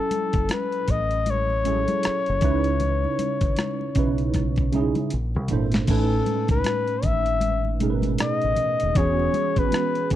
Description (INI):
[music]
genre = R&B, neo-soul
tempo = 78 BPM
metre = 4/4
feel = swing 60% on 16ths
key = unclear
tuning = A4 = 440 Hz
[part]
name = breathy flugelhorn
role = melody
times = 0.0-10.2 s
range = A4 to E5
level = -25 LUFS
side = left 4 dB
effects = none
[part]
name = tine electric piano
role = accompaniment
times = 0.0-10.2 s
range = A2 to G#5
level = -26 LUFS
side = right 5 dB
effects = ensemble chorus
[part]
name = dusty soul sampler-style drum kit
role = drums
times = 0.1-10.2 s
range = crash cymbal, hi-hat, kick drum, rim click, snare drum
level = -25 LUFS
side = equal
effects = none
[part]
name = congas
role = percussion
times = 0.1-10.2 s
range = none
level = -33 LUFS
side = left 5 dB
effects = none
[part]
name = deep dub fingered electric bass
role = bass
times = 0.3-10.2 s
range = D#1 to C#2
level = -26 LUFS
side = equal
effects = none
[sound]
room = little or no reverb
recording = dry, close 1970s-style studio recording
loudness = -20 LUFS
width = side -12 dB against mid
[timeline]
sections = 0.0-5.9 A section; 5.9-10.2 B section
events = drum fill 5.1-5.9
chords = 0.0 F#m7; 2.4 C#m9; 5.1 A#maj9#11; 5.9 Amaj9#11; 9.0 E69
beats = 0.50 1.26 2.03 | 2.80 3.57 4.34 5.11 | 5.88 6.65 7.42 8.19 | 8.96 9.73